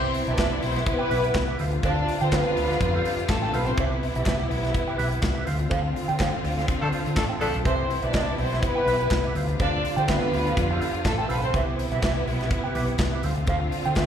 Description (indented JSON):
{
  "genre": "disco",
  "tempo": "124 BPM",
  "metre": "4/4",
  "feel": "swing 56% on 16ths",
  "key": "C major",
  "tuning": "A4 = 440 Hz",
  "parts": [
    { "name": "dark studio violin section", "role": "second line", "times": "0.0-3.8, 7.7-11.5 s", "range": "A3 to D5", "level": "-27 LUFS", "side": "left 1 dB", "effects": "slapback echo" },
    { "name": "mellow electric guitar", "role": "accompaniment", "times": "0.0-14.1 s", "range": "G4 to G5", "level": "-31 LUFS", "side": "right 6 dB", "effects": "wah, slapback echo" },
    { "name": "dark symphonic string section", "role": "sustained chords", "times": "0.0-14.1 s", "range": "C3 to F4", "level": "-29 LUFS", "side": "equal", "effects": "none" },
    { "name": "hollow-body short-scale fingered electric bass", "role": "bass", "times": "0.0-14.1 s", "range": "A1 to D3", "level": "-27 LUFS", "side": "equal", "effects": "none" },
    { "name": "modern studio drum kit", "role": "drums", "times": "0.1-14.1 s", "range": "hi-hat, kick drum, snare drum", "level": "-28 LUFS", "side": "equal", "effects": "none" },
    { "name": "group handclap", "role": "percussion", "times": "0.4-14.1 s", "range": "none", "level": "-39 LUFS", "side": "left 2 dB", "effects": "none" },
    { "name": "warm horn section", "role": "stabs", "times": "6.8-7.6 s", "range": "F3 to A4", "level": "-29 LUFS", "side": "left 2 dB", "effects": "slapback echo" }
  ],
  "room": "light reverb",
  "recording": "live gig heard through the venue's PA, recital hall reverb",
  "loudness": "-22 LUFS",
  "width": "side -8 dB against mid",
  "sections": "0.0-14.1 A section",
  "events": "band accent 5.7-7.7",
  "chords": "0.0 Cmaj7; 1.6 Dm7; 3.8 Cmaj7; 5.5 Dm7; 7.7 Cmaj7; 9.4 Dm7; 11.5 Cmaj7; 13.2 Dm7"
}